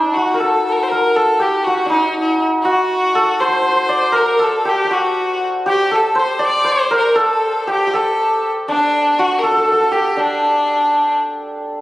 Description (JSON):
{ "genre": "Persian modal ensemble", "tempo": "80 BPM (dotted quarters)", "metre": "6/8", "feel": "straight", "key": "D dastgah homayun", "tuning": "A4 = 441 Hz", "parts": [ { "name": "santur", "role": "melody", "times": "0.0-11.8 s", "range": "D4 to D5", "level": "-16 LUFS", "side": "equal", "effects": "none" }, { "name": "clear violin", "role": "second line", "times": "0.0-11.2 s", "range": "D4 to D5", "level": "-17 LUFS", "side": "left 1 dB", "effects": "none" } ], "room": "wet scoring stage reverb, RT60 2.0 s", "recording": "recorded on a phone in the room, club reverb, compression", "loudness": "-13 LUFS", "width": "side -16 dB against mid", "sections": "0.0-11.7 A section", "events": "none", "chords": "none" }